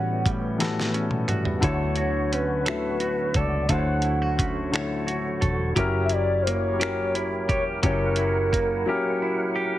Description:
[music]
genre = slow six-eight R&B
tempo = 58 BPM (dotted quarters)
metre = 6/8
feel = straight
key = unclear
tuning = A4 = 441 Hz
[part]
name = gliding portamento lead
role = melody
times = 0.0-9.2 s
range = A#4 to F#5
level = -27 LUFS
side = equal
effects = chorus, phaser, slapback echo
[part]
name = semi-hollow electric guitar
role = second line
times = 0.0-9.8 s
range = A2 to A4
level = -30 LUFS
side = right 3 dB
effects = none
[part]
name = warm grand piano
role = accompaniment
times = 0.0-9.8 s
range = A2 to E5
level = -28 LUFS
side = left 3 dB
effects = none
[part]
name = percussive tonewheel organ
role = sustained chords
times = 0.0-9.8 s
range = D3 to F#5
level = -33 LUFS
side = right 1 dB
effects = chorus vibrato, slow rotary speaker
[part]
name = dusty soul sampler-style drum kit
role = drums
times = 0.3-8.7 s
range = finger snaps, hi-hat, kick drum, snare drum, toms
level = -27 LUFS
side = equal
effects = none
[part]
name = vintage muted fingered electric bass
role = bass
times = 1.6-8.8 s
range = E1 to D2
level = -28 LUFS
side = equal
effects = none
[sound]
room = moderate studio reverb, RT60 0.8 s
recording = heavily compressed radio sound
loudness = -22 LUFS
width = side -14 dB against mid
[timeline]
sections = 0.0-9.8 A section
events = drum fill 0.6-1.6; silent gap 8.9-9.8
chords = 0.0 A13; 1.6 Dmaj7; 5.8 F#7b9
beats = 0.59 | 1.63 2.66 | 3.70 4.73 | 5.77 6.80 | 7.84 8.87

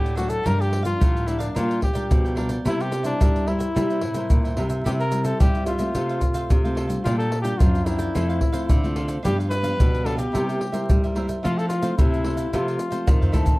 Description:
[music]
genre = samba and choro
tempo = 109 BPM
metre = 4/4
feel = straight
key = F major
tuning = A4 = 440 Hz
[part]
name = breathy trumpet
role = melody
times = 0.0-13.4 s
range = D4 to B4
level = -27 LUFS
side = left 1 dB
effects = none
[part]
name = cavaquinho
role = accompaniment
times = 0.0-13.6 s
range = D4 to G5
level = -34 LUFS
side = right 3 dB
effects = none
[part]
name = nylon-string guitar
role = accompaniment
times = 0.0-13.6 s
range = G2 to F4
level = -30 LUFS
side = left 1 dB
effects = none
[part]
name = nylon-string guitar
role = bass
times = 0.0-13.5 s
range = F2 to G3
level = -25 LUFS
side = equal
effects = none
[part]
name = egg shaker, pandeiro, surdo and tamborim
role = percussion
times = 0.1-13.6 s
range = none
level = -22 LUFS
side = equal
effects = none
[part]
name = breathy mellow concert flute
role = second line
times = 13.3-13.6 s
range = A5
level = -28 LUFS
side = left 1 dB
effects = none
[sound]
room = light reverb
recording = dark, warm production, vinyl crackle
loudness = -20 LUFS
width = side -21 dB against mid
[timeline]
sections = 0.0-13.6 A section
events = drum fill 13.1-13.6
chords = 0.5 Gm7; 1.6 Bb6; 2.7 C7; 4.9 C; 6.0 F/C; 7.1 Bb6; 8.2 F; 9.2 G7; 10.3 C7; 11.4 Fmaj7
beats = | 0.46 1.01 1.56 2.11 | 2.66 3.21 3.76 4.31 | 4.86 5.41 5.96 6.50 | 7.05 7.60 8.15 8.70 | 9.25 9.80 10.34 10.89 | 11.44 11.99 12.54 13.08

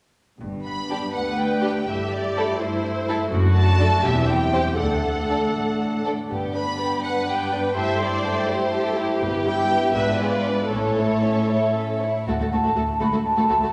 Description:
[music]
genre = classical, dramatic, fast romantic movement for symphony orchestra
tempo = 82 BPM (dotted quarters)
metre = 6/8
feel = rubato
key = G major, D major from 9.2 s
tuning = A4 = 438 Hz
[part]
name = warm French horn section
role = sustained chords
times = 0.4-12.0 s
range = A3 to E#4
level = -31 LUFS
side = equal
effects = none
[part]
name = concert harp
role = arpeggios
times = 0.4-13.7 s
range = E2 to A5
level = -33 LUFS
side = equal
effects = none
[part]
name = rich symphonic cello section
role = bass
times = 0.4-13.7 s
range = D2 to A2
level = -29 LUFS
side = equal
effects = none
[part]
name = warm symphonic double bass section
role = bass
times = 0.4-6.8, 9.2-13.5 s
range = E1 to D2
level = -30 LUFS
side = equal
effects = none
[part]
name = warm symphonic violin section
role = melody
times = 0.6-13.7 s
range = A4 to B5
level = -30 LUFS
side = equal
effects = none
[part]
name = warm symphonic violin section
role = second line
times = 0.9-13.7 s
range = B3 to C#5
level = -30 LUFS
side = equal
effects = none
[part]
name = rich symphonic viola section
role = accompaniment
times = 1.1-13.7 s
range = A3 to C5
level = -30 LUFS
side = equal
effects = none
[part]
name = mellow hollow small flute group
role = second line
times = 11.5-13.7 s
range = E5 to B5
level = -25 LUFS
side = equal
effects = none
[sound]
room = wet concert hall reverb, RT60 1.8 s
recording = recorded in a church or concert hall, small room ambience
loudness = -22 LUFS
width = mono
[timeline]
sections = 0.4-12.3 A section; 12.3-13.7 B section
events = none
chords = 0.4 G; 1.9 Am7/G; 3.3 D/F#; 4.0 C/E; 4.8 D; 6.3 G; 7.8 Am7/G; 9.2 Em/G; 9.9 G#dim7; 10.7 A; 12.3 D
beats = | 0.40 1.14 | 1.87 2.60 | 3.31 4.04 | 4.79 5.55 | 6.30 7.04 | 7.76 8.48 | 9.21 9.95 | 10.72 11.49 | 12.28 13.01

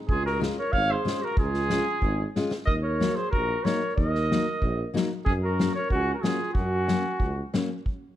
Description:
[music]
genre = alpine folk, alpine dance band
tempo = 93 BPM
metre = 2/4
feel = straight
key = Gb lydian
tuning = A4 = 441 Hz
[part]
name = warm trumpet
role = melody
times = 0.1-7.5 s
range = Gb4 to F5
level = -28 LUFS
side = equal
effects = none
[part]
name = clear clarinet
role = second line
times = 0.1-7.5 s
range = Db4 to Db5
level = -34 LUFS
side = right 4 dB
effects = none
[part]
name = mellow tuba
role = bass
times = 0.1-7.4 s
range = Ab1 to Gb2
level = -29 LUFS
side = equal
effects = none
[part]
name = unplugged drum kit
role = drums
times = 0.1-8.0 s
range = kick drum, snare drum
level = -28 LUFS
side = equal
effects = none
[part]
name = fingerpicked steel-string acoustic guitar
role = accompaniment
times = 0.4-7.7 s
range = Gb3 to F4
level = -30 LUFS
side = left 4 dB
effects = none
[sound]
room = moderate recital hall reverb, RT60 1.4 s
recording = dark, warm production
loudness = -24 LUFS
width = side -12 dB against mid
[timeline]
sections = 0.0-7.9 A section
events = drum fill 2.4-2.7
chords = 0.1 Db; 2.7 Ebm; 5.3 Gb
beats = | 0.09 0.73 | 1.38 2.02 | 2.68 3.33 | 3.98 4.62 | 5.26 5.90 | 6.54 7.20 | 7.86

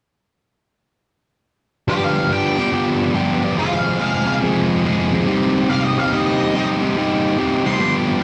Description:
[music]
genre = rock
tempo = 142 BPM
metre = 4/4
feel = swing 65% on 8ths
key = C minor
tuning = A4 = 440 Hz
[part]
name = octave-fuzz lead guitar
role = melody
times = 1.9-7.9 s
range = F4 to C6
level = -26 LUFS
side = equal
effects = wah, distortion
[part]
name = overdriven electric guitar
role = riff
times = 1.9-8.2 s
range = F2 to Ab4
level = -19 LUFS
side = equal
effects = none
[sound]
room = light reverb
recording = dry, close 1970s-style studio recording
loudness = -18 LUFS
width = mono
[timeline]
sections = 1.9-8.2 A section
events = none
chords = 1.9 G7; 3.6 Fm; 5.3 Cm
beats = | 1.88 2.31 2.73 3.15 | 3.57 4.00 4.42 4.84 | 5.26 5.68 6.11 6.53 | 6.95 7.37 7.79 8.21

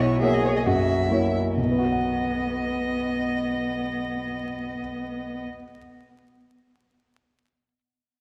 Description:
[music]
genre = quick classical-period movement for piano quintet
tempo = 131 BPM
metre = 4/4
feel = rubato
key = B major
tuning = A4 = 440 Hz
[part]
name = warm violin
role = melody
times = 0.0-5.4 s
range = C#5 to E5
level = -33 LUFS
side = equal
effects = none
[part]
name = warm cello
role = second line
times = 0.0-5.4 s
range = B3 to G#4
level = -30 LUFS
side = equal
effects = none
[part]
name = clear concert grand piano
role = accompaniment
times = 0.0-5.8 s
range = B1 to F#5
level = -28 LUFS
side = equal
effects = none
[sound]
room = wet concert hall reverb, RT60 2.4 s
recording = dark, warm production, vinyl crackle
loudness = -25 LUFS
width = mono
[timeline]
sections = 0.0-1.6 A section; 1.6-5.2 B section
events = slowing down 0.0-1.6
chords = 0.0 F#7/B; 1.6 B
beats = 0.22 0.66 1.11 | 1.58 2.03 2.50 2.96 | 3.42 3.87 4.33 4.78

